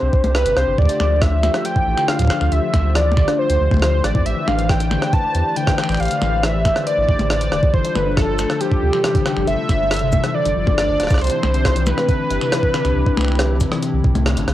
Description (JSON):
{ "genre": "IDM", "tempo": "138 BPM", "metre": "4/4", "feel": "straight", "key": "D dorian", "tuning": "A4 = 440 Hz", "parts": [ { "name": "warm velvety synth lead", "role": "melody", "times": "0.0-14.3 s", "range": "G4 to A5", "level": "-20 LUFS", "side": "right 1 dB", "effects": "chorus, cassette tape, analog delay" }, { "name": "hollow soft pad", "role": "sustained chords", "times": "0.0-14.5 s", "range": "C3 to D5", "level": "-27 LUFS", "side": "right 1 dB", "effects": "chorus, cassette tape" }, { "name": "warm sub bass", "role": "bass", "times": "0.0-14.5 s", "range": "D1 to F2", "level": "-20 LUFS", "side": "equal", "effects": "tube saturation" }, { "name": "electronic kick drum", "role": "drums", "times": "0.1-14.1 s", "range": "none", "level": "-18 LUFS", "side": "equal", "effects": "cassette tape" }, { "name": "jungle sampler-style drum kit", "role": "drums", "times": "0.2-14.5 s", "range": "cabasa, finger snaps, hi-hat, rim click, toms", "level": "-24 LUFS", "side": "equal", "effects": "cassette tape" }, { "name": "harp-like synth pluck", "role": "arpeggios", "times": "0.8-14.5 s", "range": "A2 to D4", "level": "-24 LUFS", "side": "left 8 dB", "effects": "chorus, phaser, cassette tape, tape echo" } ], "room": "light reverb, digital ambience", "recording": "home recording on cassette", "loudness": "-15 LUFS", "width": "side -13 dB against mid", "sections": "0.0-14.5 A section", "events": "kick drops out 0.3-0.8; band accent 14.3", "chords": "0.0 C5; 0.8 Dm9; 4.3 Am11; 7.7 G7sus4; 11.2 Cmaj7" }